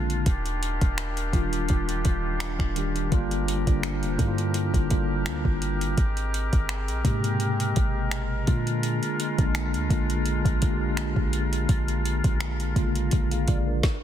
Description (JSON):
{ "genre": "contemporary R&B", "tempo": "84 BPM", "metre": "4/4", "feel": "swing 54% on 16ths", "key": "unclear", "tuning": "A4 = 441 Hz", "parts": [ { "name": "mellow tine electric piano", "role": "accompaniment", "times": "0.0-14.0 s", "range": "Cb3 to F5", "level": "-28 LUFS", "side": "equal", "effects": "medium stereo tremolo" }, { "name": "warm woodwind section", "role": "sustained chords", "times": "0.0-13.8 s", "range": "Eb3 to Bb4", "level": "-32 LUFS", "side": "left 2 dB", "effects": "none" }, { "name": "warm 808-style bass", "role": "bass", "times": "0.0-13.8 s", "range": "Eb1 to Bb2", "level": "-28 LUFS", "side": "equal", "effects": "none" }, { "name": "smooth R&B drum kit", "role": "drums", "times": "0.1-14.0 s", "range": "finger snaps, hi-hat, kick drum, snare drum", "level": "-26 LUFS", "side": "equal", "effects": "soft clipping on snare" } ], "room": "little or no reverb", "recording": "dense, heavily limited modern master", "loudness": "-23 LUFS", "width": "side -10 dB against mid", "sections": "0.0-14.0 A section", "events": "none", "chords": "0.3 Ebmaj9; 3.1 Gm7; 6.0 Abmaj9; 8.5 Bb7" }